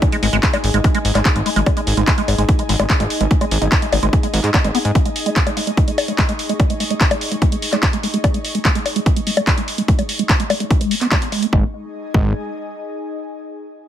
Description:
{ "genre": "psychedelic trance", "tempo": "146 BPM", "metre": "4/4", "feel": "straight", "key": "unclear", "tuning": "A4 = 440 Hz", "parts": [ { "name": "electronic kick drum", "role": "drums", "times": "0.0-12.2 s", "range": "none", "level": "-16 LUFS", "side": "equal", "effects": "none" }, { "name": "techno drum kit", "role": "drums", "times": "0.0-11.5 s", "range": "bongos, handclaps, hi-hat", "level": "-21 LUFS", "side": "left 2 dB", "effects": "none" }, { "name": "downlifter", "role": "sound effects", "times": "0.0-1.7 s", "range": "none", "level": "barely audible", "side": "none", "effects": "none" }, { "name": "airy breathy pad", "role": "texture", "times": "0.0-13.1 s", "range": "D#4 to C#6", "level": "-28 LUFS", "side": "left 2 dB", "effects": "chorus, sidechain pumping" }, { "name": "liquid acid bass", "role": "riff", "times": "0.1-12.3 s", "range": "G#3 to B3", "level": "-22 LUFS", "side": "moving between left 2 dB and right 6 dB", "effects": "chorus, auto-pan, sidechain pumping, ping-pong delay" }, { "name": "fat analog bass", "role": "bass", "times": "0.2-4.9, 11.5-12.3 s", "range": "G#1 to G#2", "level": "-18 LUFS", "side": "equal", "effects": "none" } ], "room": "light reverb", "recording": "none", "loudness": "-15 LUFS", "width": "side -10 dB against mid", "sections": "0.0-11.5 A section; 11.5-13.2 B section", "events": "fade-out on analog synth pad 0.0-11.5; filter sweep on acid bass 0.0-11.5", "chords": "0.0 G#5" }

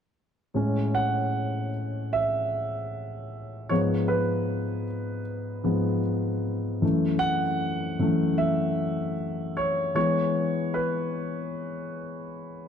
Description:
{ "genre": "pop", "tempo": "76 BPM", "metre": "4/4", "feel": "straight", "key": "A major", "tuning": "A4 = 441 Hz", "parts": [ { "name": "warm concert grand piano", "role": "accompaniment", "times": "0.5-12.7 s", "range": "F#2 to F#5", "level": "-25 LUFS", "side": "left 1 dB", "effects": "none" } ], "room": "moderate plate reverb, RT60 2.6 s", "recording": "none", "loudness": "-24 LUFS", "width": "side -8 dB against mid", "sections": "0.6-12.7 A section", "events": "grand piano solo 0.6-12.7", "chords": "0.6 Amaj7; 3.7 G#m6; 6.8 F#m7; 10.0 E" }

